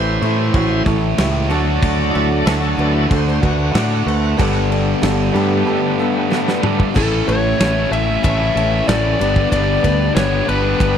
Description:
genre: classic rock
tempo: 94 BPM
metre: 4/4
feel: straight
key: A mixolydian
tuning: A4 = 440 Hz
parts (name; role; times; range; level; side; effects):
- bright upright piano; accompaniment; 0.0-11.0 s; A3 to B4; -27 LUFS; right 5 dB; none
- picked acoustic archtop guitar; accompaniment; 0.0-11.0 s; G2 to A4; -29 LUFS; left 4 dB; none
- bright tonewheel organ; sustained chords; 0.0-11.0 s; C#3 to F#5; -24 LUFS; equal; slow rotary speaker, overdrive
- sludgy distorted guitar; riff; 0.0-11.0 s; G2 to G4; -22 LUFS; left 13 dB; overdrive
- tight distorted guitar; riff; 0.0-11.0 s; G2 to E4; -22 LUFS; right 15 dB; distortion
- growling fingered electric bass; bass; 0.0-11.0 s; G1 to A2; -19 LUFS; equal; overdrive
- big rock drum kit; drums; 0.2-11.0 s; crash cymbal, kick drum, ride cymbal, snare drum, toms; -22 LUFS; equal; none
- smooth overdriven lead guitar; melody; 7.0-11.0 s; A4 to E5; -19 LUFS; left 3 dB; none
room: little or no reverb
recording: dry, close 1970s-style studio recording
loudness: -14 LUFS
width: side -8 dB against mid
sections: 0.0-7.0 A section; 7.0-11.0 B section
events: tonewheel organ solo 0.0-7.0; drum fill 6.3-7.0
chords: 0.0 A; 1.5 D; 4.4 Gadd9; 7.0 A; 9.2 G

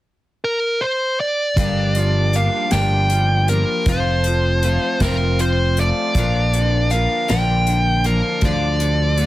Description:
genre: folk rock and heartland rock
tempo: 52 BPM (dotted quarters)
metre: 6/8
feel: straight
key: G minor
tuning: A4 = 440 Hz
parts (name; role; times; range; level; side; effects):
- dark smooth lead guitar; melody; 0.4-9.3 s; Bb4 to G5; -20 LUFS; equal; overdrive
- picked twelve-string acoustic guitar; accompaniment; 1.6-9.3 s; G2 to Bb4; -25 LUFS; left 4 dB; none
- electric guitar through a small old amp; riff; 1.6-9.3 s; F2 to D4; -26 LUFS; right 1 dB; none
- fingered electric bass; bass; 1.6-9.3 s; F1 to D2; -18 LUFS; equal; none
- unplugged drum kit; drums; 1.6-9.3 s; hi-hat, kick drum, snare drum; -24 LUFS; equal; none
room: little or no reverb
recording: heavily compressed radio sound, multiband compression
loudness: -16 LUFS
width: side -16 dB against mid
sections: 0.0-1.6 A section; 1.6-9.3 B section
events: none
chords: 0.0 N.C.; 1.6 Gm7; 3.9 F; 6.2 Bb; 8.4 Dm

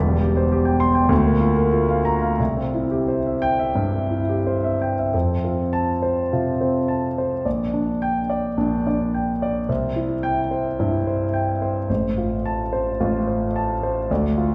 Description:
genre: classical, romantic character piece for solo piano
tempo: 84-112 BPM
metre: 4/4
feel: rubato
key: F major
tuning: A4 = 439 Hz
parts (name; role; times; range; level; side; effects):
- warm concert grand piano; solo; 0.0-14.5 s; E1 to C6; -22 LUFS; equal; none
room: wet recital hall reverb, RT60 1.4 s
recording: heard from further back in the room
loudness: -22 LUFS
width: mono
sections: 0.0-5.1 A section; 5.1-14.5 B section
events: none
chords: 0.0 C/E; 1.1 Bb/D; 2.4 C; 5.1 F; 7.5 Gm/Bb; 9.7 C; 11.9 F/A

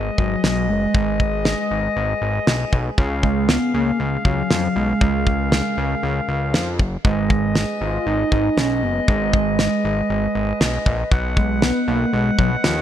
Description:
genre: synth-pop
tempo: 118 BPM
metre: 4/4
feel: straight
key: G# dorian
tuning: A4 = 440 Hz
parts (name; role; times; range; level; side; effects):
- warm velvety synth lead; melody; 0.0-12.8 s; E#3 to E#4; -22 LUFS; right 2 dB; chorus
- mellow woodwind section; sustained chords; 0.0-12.8 s; C#3 to F#5; -24 LUFS; left 2 dB; none
- fat analog bass; bass; 0.0-12.8 s; F#1 to E#2; -23 LUFS; equal; none
- damped 70s drum kit; drums; 0.2-12.8 s; kick drum, snare drum; -19 LUFS; equal; none
room: light reverb, studio reverb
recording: bright 1980s-style digital production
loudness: -17 LUFS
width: side -10 dB against mid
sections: 0.0-12.8 A section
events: none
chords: 0.0 G#m; 3.0 C#; 7.0 G#m; 11.1 B

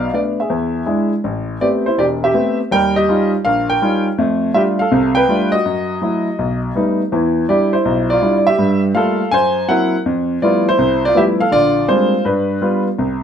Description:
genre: solo jazz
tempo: 163 BPM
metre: 4/4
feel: swing 66% on 8ths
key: A minor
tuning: A4 = 440 Hz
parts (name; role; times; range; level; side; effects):
- clear grand piano; solo; 0.0-13.2 s; E1 to G#5; -14 LUFS; equal; none
room: moderate studio reverb, RT60 0.7 s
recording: band playing live in one room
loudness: -14 LUFS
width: side -8 dB against mid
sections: 0.0-1.2 A section; 1.2-13.0 B section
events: none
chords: 0.0 Bm7b5; 0.5 E7; 1.2 Am9; 2.7 D#9; 4.2 F69; 5.6 F#m7; 6.4 Baug7; 7.1 Em7; 8.6 Gm9; 9.3 F#7#11; 10.1 Fmaj9#11; 11.5 Bb13; 12.3 G7

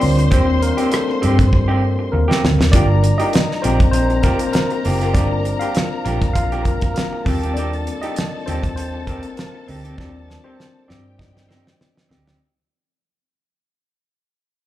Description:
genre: lush 1970s-style soul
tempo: 99 BPM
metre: 4/4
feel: swing 54% on 16ths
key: unclear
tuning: A4 = 440 Hz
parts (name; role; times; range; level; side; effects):
- dark studio string section; second line; 0.0-12.1 s; G4 to C6; -28 LUFS; left 3 dB; slapback echo
- tine electric piano; accompaniment; 0.0-12.4 s; G3 to F5; -22 LUFS; left 3 dB; medium stereo tremolo, slapback echo
- electric guitar through a small old amp; riff; 0.0-12.4 s; Bb3 to G4; -26 LUFS; right 3 dB; slapback echo
- vintage muted fingered electric bass; bass; 0.0-12.3 s; F#1 to G2; -18 LUFS; right 1 dB; none
- damped 70s drum kit; drums; 0.0-12.4 s; hi-hat, kick drum, rim click, snare drum; -19 LUFS; right 1 dB; none
room: little or no reverb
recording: live gig heard through the venue's PA, club reverb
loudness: -15 LUFS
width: side -14 dB against mid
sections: 0.0-2.7 A section; 2.7-12.4 B section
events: tine electric piano solo 0.0-2.7, 2.7-12.4; drum fill 1.5-2.7, 10.0-12.4; fade-out 2.7-12.4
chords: 0.0 Eb6; 2.7 Gm7; 7.3 Eb6

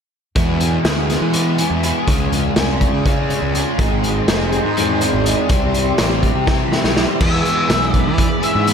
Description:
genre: psychedelic rock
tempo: 245 BPM (eighths)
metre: 7/8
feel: straight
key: unclear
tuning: A4 = 440 Hz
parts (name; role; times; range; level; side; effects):
- crunchy overdriven guitar; riff; 0.4-8.7 s; E2 to G#4; -19 LUFS; equal; flanger
- fuzz picked electric bass; bass; 0.4-8.7 s; F1 to E3; -20 LUFS; equal; overdrive
- tanpura; drone; 0.4-8.7 s; E2 to G#3; -26 LUFS; right 1 dB; none
- raw garage drum kit; drums; 0.4-8.7 s; crash cymbal, hi-hat, kick drum, snare drum; -19 LUFS; equal; none
- mellow tonewheel organ; sustained chords; 3.8-8.7 s; G4 to B#5; -26 LUFS; right 3 dB; slow rotary speaker, chorus vibrato
- octave-fuzz lead guitar; melody; 7.2-8.7 s; B4 to E5; -20 LUFS; left 2 dB; distortion, tape echo
room: moderate lush hall reverb, RT60 2.1 s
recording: dreamy mix soaked in reverb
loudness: -14 LUFS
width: side -7 dB against mid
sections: 0.4-7.2 A section; 7.2-8.7 B section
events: drum fill 6.5-7.2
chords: 0.4 E; 2.1 C#; 3.8 G#; 5.5 C; 7.2 E

